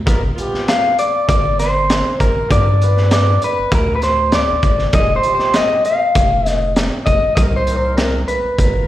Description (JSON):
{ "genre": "straight-eighth soul blues", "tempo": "99 BPM", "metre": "4/4", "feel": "straight", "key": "unclear", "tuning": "A4 = 441 Hz", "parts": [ { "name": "mellow horn section", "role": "sustained chords", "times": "0.1-8.9 s", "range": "G3 to A#5", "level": "-25 LUFS", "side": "right 1 dB", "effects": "none" }, { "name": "round analog bass", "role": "bass", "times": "0.1-8.9 s", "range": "F1 to G2", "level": "-18 LUFS", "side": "equal", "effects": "none" }, { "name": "crunchy breakbeat drum kit", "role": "drums", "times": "0.1-8.7 s", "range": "hi-hat, kick drum, snare drum", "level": "-18 LUFS", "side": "equal", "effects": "none" }, { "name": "electric guitar through a small old amp", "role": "melody", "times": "0.7-8.9 s", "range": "A#4 to F5", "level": "-16 LUFS", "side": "left 1 dB", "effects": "slapback echo" } ], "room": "light reverb", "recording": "live gig heard through the venue's PA, recital hall reverb", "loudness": "-13 LUFS", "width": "side -13 dB against mid", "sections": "0.0-8.9 A section", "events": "none", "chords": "0.1 G7#9; 4.9 Fm7; 7.4 Cm7", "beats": "| 0.07 0.67 1.28 1.89 | 2.50 3.11 3.72 4.33 | 4.93 5.54 6.15 6.76 | 7.37 7.97 8.58" }